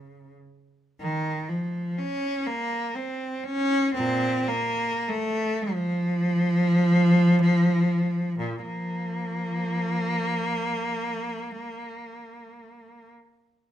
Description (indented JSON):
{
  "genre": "classical, free, expressive piece for unaccompanied cello",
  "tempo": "17-42 BPM (dotted quarters)",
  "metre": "6/8",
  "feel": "rubato",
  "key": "Bb minor",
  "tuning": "A4 = 440 Hz",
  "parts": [
    { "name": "rich cello", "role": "solo", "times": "0.0-13.1 s", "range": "Bb2 to Db4", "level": "-23 LUFS", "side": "equal", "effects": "none" }
  ],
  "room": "moderate stone room reverb, RT60 1.0 s",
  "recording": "close, detailed microphones",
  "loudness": "-23 LUFS",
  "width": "side -11 dB against mid",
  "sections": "1.0-8.4 A section; 8.4-12.4 B section",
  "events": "slowing down 0.0-8.4",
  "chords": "none"
}